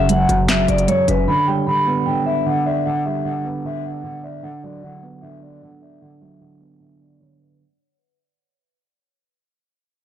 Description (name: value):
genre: hip hop, trap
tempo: 152 BPM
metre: 4/4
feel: half-time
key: unclear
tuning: A4 = 440 Hz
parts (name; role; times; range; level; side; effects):
- vibraphone with medium hard mallets; melody; 0.0-7.5 s; B4 to B5; -20 LUFS; left 2 dB; low-pass filter, ping-pong delay
- felt-muted upright piano; accompaniment; 0.0-7.6 s; F#2 to D5; -21 LUFS; right 4 dB; low-pass filter
- hard-hitting 808-style bass; bass; 0.0-1.3 s; F#1; -22 LUFS; left 1 dB; none
- trap drum kit; drums; 0.1-1.2 s; handclaps, hi-hat, snare drum; -22 LUFS; left 2 dB; none
room: light reverb, small room ambience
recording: blown-out, overdriven recording, overdrive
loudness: -16 LUFS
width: side -10 dB against mid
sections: 0.0-7.6 A section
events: fade-out 0.0-7.6; filter sweep 0.0-7.6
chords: 0.0 F#5; 1.3 G; 4.4 Bm